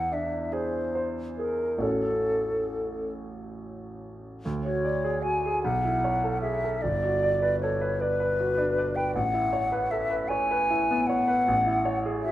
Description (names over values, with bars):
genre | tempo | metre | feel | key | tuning
classical, impressionist duo for flute and grand piano | 45-53 BPM (dotted quarters) | 6/8 | rubato | A major | A4 = 441 Hz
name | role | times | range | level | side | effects
hollow concert flute | melody | 0.0-12.3 s | A4 to G#5 | -26 LUFS | left 1 dB | none
clear concert grand piano | accompaniment | 0.0-12.3 s | G1 to D5 | -28 LUFS | right 1 dB | none
room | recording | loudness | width
moderate recital hall reverb, RT60 1.4 s | none | -24 LUFS | side -13 dB against mid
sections
0.0-4.4 A section; 4.4-12.3 B section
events
none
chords
0.0 Eaug7; 1.8 A6; 4.4 Dmaj7#11; 5.6 B9sus4; 6.8 Gmaj7; 9.1 Amaj9; 11.5 C#m/A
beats
0.52 | 1.81 3.13 | 4.43 5.62 | 6.82 7.99 | 9.14 10.30 | 11.47